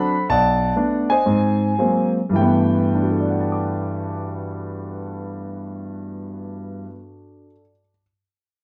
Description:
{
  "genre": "solo jazz",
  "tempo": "101-134 BPM",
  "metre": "4/4",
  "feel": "swing 66% on 8ths",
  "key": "G major",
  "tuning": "A4 = 439 Hz",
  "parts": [
    { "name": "warm grand piano", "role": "solo", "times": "0.0-8.0 s", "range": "B1 to D6", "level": "-21 LUFS", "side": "equal", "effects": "none" }
  ],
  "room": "moderate studio reverb, RT60 0.7 s",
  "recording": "dark, warm production",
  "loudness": "-20 LUFS",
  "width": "mono",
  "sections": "0.0-2.4 A section; 2.4-7.1 B section",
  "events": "slowing down 0.0-2.4",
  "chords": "0.3 Bm7; 1.3 Ab9; 2.4 G69",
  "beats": "| 0.29 0.76 1.25 1.78 | 2.35 2.94 3.53 4.12 | 4.72 5.31 5.90 6.49"
}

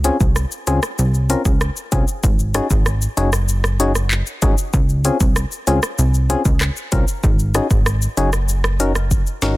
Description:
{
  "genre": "dancehall",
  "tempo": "96 BPM",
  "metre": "4/4",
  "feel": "straight",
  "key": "Db major",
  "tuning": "A4 = 440 Hz",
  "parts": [
    { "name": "percussive organ stab", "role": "accompaniment", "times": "0.0-9.6 s", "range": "C4 to Bb4", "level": "-22 LUFS", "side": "left 3 dB", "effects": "chorus" },
    { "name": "plucky analog bass", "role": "bass", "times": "0.0-9.5 s", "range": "Gb1 to Db2", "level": "-18 LUFS", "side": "equal", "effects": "none" },
    { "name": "afro-pop drum kit", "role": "drums", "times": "0.0-9.6 s", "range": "handclaps, hi-hat, kick drum, rim click, shaker, snare drum", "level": "-19 LUFS", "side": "equal", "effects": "soft clipping on snare" }
  ],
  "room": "little or no reverb",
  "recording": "dense, heavily limited modern master",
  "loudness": "-15 LUFS",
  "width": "side -18 dB against mid",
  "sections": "0.0-9.6 A section",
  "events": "drum fill 9.1-9.6",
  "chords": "0.0 Dbmaj7; 2.2 Ab7sus4; 4.7 Dbmaj7; 7.2 Ab7sus4",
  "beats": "0.36 0.99 1.61 | 2.24 2.86 3.49 4.11 | 4.74 5.36 5.99 6.61 | 7.24 7.86 8.49 9.11"
}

